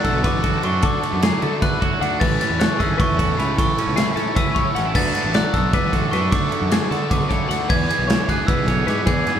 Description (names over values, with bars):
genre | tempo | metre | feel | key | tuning
math rock and midwest emo | 306 BPM (eighths) | 7/8 | straight | unclear | A4 = 440 Hz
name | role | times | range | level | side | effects
glockenspiel with soft plastic mallets | melody | 0.0-9.4 s | B5 to A6 | -24 LUFS | equal | none
twangy electric guitar | accompaniment | 0.0-9.4 s | A2 to C#5 | -28 LUFS | right 7 dB | none
twelve-string electric guitar | arpeggios | 0.0-9.4 s | G#4 to F#5 | -26 LUFS | left 7 dB | slapback echo
overdriven electric guitar | riff | 0.0-9.4 s | A2 to A4 | -27 LUFS | right 2 dB | spring reverb
fuzz fingered electric bass | bass | 0.0-9.4 s | G#1 to D3 | -25 LUFS | equal | overdrive
modern studio drum kit | drums | 0.0-9.4 s | crash cymbal, kick drum, ride cymbal, snare drum | -21 LUFS | equal | none
room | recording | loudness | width
light reverb | band playing live in one room | -17 LUFS | side -9 dB against mid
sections
0.0-9.4 A section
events
none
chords
0.0 D6; 2.2 Amaj9; 5.0 D6; 7.7 E13